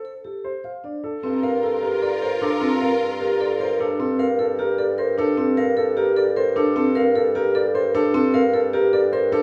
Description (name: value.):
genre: classical, minimalist pattern music.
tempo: 304 BPM (eighths).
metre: 7/8.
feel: straight.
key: G minor.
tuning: A4 = 443 Hz.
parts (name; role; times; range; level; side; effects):
dark concert grand piano; melody; 0.0-9.4 s; A4 to F5; -27 LUFS; equal; none.
vibraphone with soft mallets; arpeggios; 0.0-9.4 s; C4 to C5; -23 LUFS; equal; none.
rich studio string section; sustained chords; 1.2-3.8 s; F4 to Bb4; -32 LUFS; equal; none.
mellow bassoon; bass; 1.2-9.4 s; G2; -29 LUFS; equal; none.
room: light reverb.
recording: close, detailed microphones.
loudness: -21 LUFS.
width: mono.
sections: 0.0-1.2 A section; 1.2-9.4 B section.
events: none.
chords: 0.0 Fadd9; 1.2 Gm9.